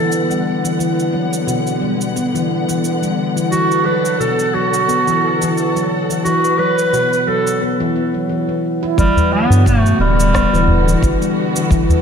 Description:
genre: organic downtempo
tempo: 88 BPM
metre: 4/4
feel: swing 55% on 16ths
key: unclear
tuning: A4 = 444 Hz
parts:
  - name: warm clarinet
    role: melody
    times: 0.0-11.3 s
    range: G3 to B4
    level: -18 LUFS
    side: right 1 dB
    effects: vintage 12-bit sampler grit, ping-pong delay, slapback echo
  - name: dark studio string section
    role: sustained chords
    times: 0.0-12.0 s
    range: D3 to F#5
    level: -23 LUFS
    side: equal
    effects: sidechain pumping
  - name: handpan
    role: arpeggios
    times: 0.0-12.0 s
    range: B2 to E4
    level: -18 LUFS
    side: left 1 dB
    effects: low-pass filter, ping-pong delay, slapback echo
  - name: electronic cabasa and rim click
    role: drums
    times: 0.1-12.0 s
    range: none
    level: -27 LUFS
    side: right 2 dB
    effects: studio reverb
  - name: round analog bass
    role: bass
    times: 9.0-11.8 s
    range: D1 to G2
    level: -15 LUFS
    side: equal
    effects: sidechain pumping
  - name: electronic kick drum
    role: drums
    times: 9.0-11.9 s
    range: none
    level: -18 LUFS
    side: equal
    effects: studio reverb
  - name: udu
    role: percussion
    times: 9.2-12.0 s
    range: none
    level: -16 LUFS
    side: equal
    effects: none
room: moderate lush hall reverb, RT60 2.4 s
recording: big arena sound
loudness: -14 LUFS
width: side -7 dB against mid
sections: 0.0-9.0 A section; 9.0-12.0 B section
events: break 7.6-9.0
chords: 0.0 Gmaj7; 3.5 D; 9.0 Gmaj7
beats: 0.11 | 0.80 1.48 2.16 2.84 | 3.52 4.20 4.89 5.57 | 6.25 6.93 7.61 8.29 | 8.98 9.66 10.34 11.02 | 11.70

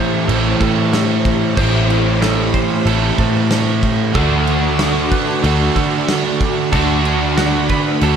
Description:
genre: rock, shoegaze and dream pop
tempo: 93 BPM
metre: 4/4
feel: straight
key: A dorian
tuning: A4 = 442 Hz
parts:
  - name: string machine, violas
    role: sustained chords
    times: 0.0-8.2 s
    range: F#4 to B5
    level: -24 LUFS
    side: right 1 dB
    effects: ensemble chorus
  - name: direct-recorded clean electric guitar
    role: arpeggios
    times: 0.0-8.2 s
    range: F#4 to C5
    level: -25 LUFS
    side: right 8 dB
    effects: lush chorus, tape echo
  - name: overdriven semi-hollow guitar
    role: riff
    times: 0.0-8.2 s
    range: A2 to F#4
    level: -20 LUFS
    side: left 9 dB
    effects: ensemble chorus
  - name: overdriven semi-hollow guitar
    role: riff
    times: 0.0-8.2 s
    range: A2 to F#4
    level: -19 LUFS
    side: right 7 dB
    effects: reverse reverb
  - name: vintage muted picked electric bass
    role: bass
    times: 0.3-8.2 s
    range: A1 to D3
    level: -19 LUFS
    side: right 1 dB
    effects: none
  - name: loose indie drum kit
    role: drums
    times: 0.3-8.2 s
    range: crash cymbal, kick drum, snare drum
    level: -20 LUFS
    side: right 1 dB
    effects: none
room: moderate plate reverb, RT60 2.4 s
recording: dreamy mix soaked in reverb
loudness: -13 LUFS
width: side -7 dB against mid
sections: 0.0-8.2 A section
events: none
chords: 0.0 Am7; 4.2 D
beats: 0.28 0.93 | 1.57 2.22 2.86 3.51 | 4.15 4.80 5.44 6.09 | 6.73 7.38 8.02

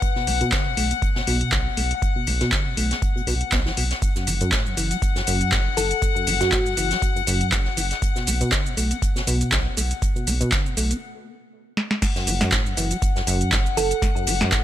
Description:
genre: acid house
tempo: 120 BPM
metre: 4/4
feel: swing 55% on 16ths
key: unclear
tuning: A4 = 439 Hz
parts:
  - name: warm chamber string section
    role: sustained chords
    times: 0.0-14.6 s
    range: F#5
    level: -28 LUFS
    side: left 11 dB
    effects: sidechain pumping
  - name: booming analog drum machine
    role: drums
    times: 0.0-14.6 s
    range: crash cymbal, handclaps, hi-hat, shaker, snare drum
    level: -25 LUFS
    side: right 1 dB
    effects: none
  - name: electronic kick drum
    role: drums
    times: 0.0-14.6 s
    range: none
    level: -24 LUFS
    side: right 1 dB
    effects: none
  - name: jazz brush drum kit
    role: drums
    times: 0.0-14.6 s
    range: hi-hat, snare drum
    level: -32 LUFS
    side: left 2 dB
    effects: sidechain pumping on hats, high-pass filter on hats, high-pass filter on snare, high-pass filter on room
  - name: deep acid bass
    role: riff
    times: 0.2-14.6 s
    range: F#2 to B3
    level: -27 LUFS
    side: equal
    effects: tube saturation, sidechain pumping, ping-pong delay
  - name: round analog bass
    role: bass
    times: 0.3-14.4 s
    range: F#1 to B1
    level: -25 LUFS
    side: right 1 dB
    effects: sidechain pumping
  - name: thumb-piano-like synth pluck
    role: melody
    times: 5.8-6.6, 13.8-14.0 s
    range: F#4 to A4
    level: -27 LUFS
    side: right 2 dB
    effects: chorus, ping-pong delay
room: little or no reverb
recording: none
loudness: -19 LUFS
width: side -12 dB against mid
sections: 0.0-12.0 A section; 12.0-14.6 B section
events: filter sweep on acid bass 0.0-12.0; break 11.0-12.0; drum fill 11.8; drop 12.0-14.6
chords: 0.0 B5; 4.0 N.C.; 8.0 B5; 12.0 F#m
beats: | 0.02 0.52 1.02 1.52 | 2.02 2.52 3.02 3.52 | 4.02 4.52 5.02 5.52 | 6.02 6.52 7.02 7.52 | 8.02 8.52 9.02 9.52 | 10.02 10.52 11.02 11.52 | 12.02 12.52 13.02 13.52 | 14.02 14.52

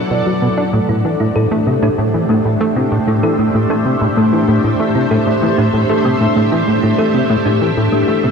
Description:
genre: ambient, sequencer-driven space music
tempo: 96 BPM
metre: 4/4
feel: straight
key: A dorian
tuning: A4 = 442 Hz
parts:
  - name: string machine, full ensemble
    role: sustained chords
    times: 0.0-8.3 s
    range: F#3 to F#5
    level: -16 LUFS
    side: left 1 dB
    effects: phaser, ensemble chorus, shimmer reverb
  - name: plucky analog bass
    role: riff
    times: 0.0-8.3 s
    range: A2 to D4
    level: -16 LUFS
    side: equal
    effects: ping-pong delay
  - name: breathy flute-like synth lead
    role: melody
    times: 0.1-0.7 s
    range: D5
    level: -27 LUFS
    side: right 2 dB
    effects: tremolo, analog chorus, shimmer reverb, ping-pong delay
  - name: thumb-piano-like synth pluck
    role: arpeggios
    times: 0.7-8.3 s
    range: A3 to A4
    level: -20 LUFS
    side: right 1 dB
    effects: chorus, auto-pan, shimmer reverb, ping-pong delay
room: wet cathedral reverb, RT60 5.2 s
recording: in a vast, echoing space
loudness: -12 LUFS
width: side -6 dB against mid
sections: 0.0-8.3 A section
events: none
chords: 0.0 Bm; 0.7 Am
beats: 0.11 | 0.73 1.36 1.98 2.61 | 3.23 3.86 4.48 5.11 | 5.73 6.36 6.98 7.61 | 8.23

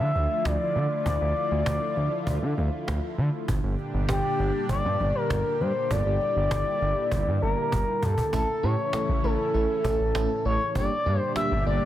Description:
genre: synth-pop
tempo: 99 BPM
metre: 4/4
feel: straight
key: unclear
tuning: A4 = 441 Hz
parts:
  - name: expressive synth lead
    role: melody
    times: 0.0-11.9 s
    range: G4 to E5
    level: -27 LUFS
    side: left 2 dB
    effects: chorus
  - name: lush unison pad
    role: sustained chords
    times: 0.0-11.9 s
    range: A2 to G4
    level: -32 LUFS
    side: right 1 dB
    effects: chorus, phaser
  - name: smooth gliding synth bass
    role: bass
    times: 0.0-11.8 s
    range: G1 to D3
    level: -27 LUFS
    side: equal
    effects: none
  - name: cajon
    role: drums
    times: 0.1-11.9 s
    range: none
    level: -31 LUFS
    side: right 1 dB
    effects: none
  - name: FM electric piano with tremolo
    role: accompaniment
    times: 8.3-11.8 s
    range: G3 to A4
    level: -31 LUFS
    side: right 2 dB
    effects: phaser
room: moderate plate reverb, RT60 2.5 s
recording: dense, heavily limited modern master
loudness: -23 LUFS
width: side -12 dB against mid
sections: 0.0-8.3 A section; 8.3-11.9 B section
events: drum fill 7.7-8.3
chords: 0.0 Dmadd9; 3.5 Gm; 8.3 A; 10.8 Gm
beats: 0.45 | 1.06 1.67 2.27 2.88 | 3.48 4.09 4.70 5.30 | 5.91 6.51 7.12 7.72 | 8.33 8.94 9.54 10.15 | 10.76 11.36

